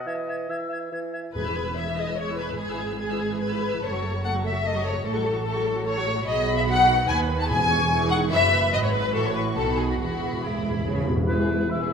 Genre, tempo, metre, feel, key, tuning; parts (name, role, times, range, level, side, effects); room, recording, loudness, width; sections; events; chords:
quick classical-period movement for symphony orchestra; 145 BPM; 3/4; straight; E major; A4 = 445 Hz
mellow oboe; second line; 0.0-0.9, 11.3-11.9 s; B4 to E5; -32 LUFS; left 1 dB
clear clarinet; second line; 0.1-1.2 s; E5; -37 LUFS; equal
silver concert flute; second line; 0.1-1.2 s; G#6; -38 LUFS; left 2 dB
mellow bassoon; accompaniment; 0.1-1.3 s; E3; -34 LUFS; right 3 dB
muted studio violin section; second line; 1.3-11.9 s; B3 to A5; -25 LUFS; left 3 dB
muted studio double bass section; bass; 1.3-11.9 s; E1 to D#2; -31 LUFS; right 2 dB
muted studio violin section; melody; 1.4-11.9 s; G#4 to G#6; -34 LUFS; left 2 dB
muted studio viola section; accompaniment; 1.4-11.9 s; D#3 to B4; -30 LUFS; right 3 dB
muted studio cello section; bass; 1.4-11.9 s; D#2 to C#3; -30 LUFS; right 3 dB
timpani; percussion; 1.4-1.9, 7.5-11.2 s; E2; -29 LUFS; equal
mellow French horn section; sustained chords; 11.3-11.9 s; G#3 to E4; -27 LUFS; left 3 dB
wet scoring stage reverb, RT60 1.5 s; minimal, uncompressed stereo recording; -22 LUFS; side -6 dB against mid
0.0-1.4 A section; 1.4-11.3 B section
timpani fill 10.0-11.3
0.1 E; 2.6 E/G#; 3.8 F#m; 5.0 F#m/A; 6.3 B; 7.5 E; 8.7 G#m7; 9.2 F#m7/A; 9.6 B7; 10.0 E